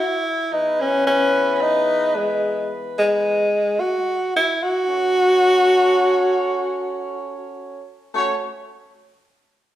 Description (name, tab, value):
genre	disco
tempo	110 BPM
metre	4/4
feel	straight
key	F# dorian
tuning	A4 = 440 Hz
part	breathy tenor saxophone	melody	0.0-7.6 s	G#3 to F#4	-17 LUFS	equal	none
part	mellow horn section	stabs	0.5-8.3 s	E3 to C#5	-24 LUFS	equal	none
room	wet large studio reverb, RT60 1.4 s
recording	band playing live in one room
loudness	-17 LUFS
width	side -12 dB against mid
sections	0.0-8.1 A section; 8.1-9.8 B section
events	none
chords	0.0 Emaj7; 3.8 F#m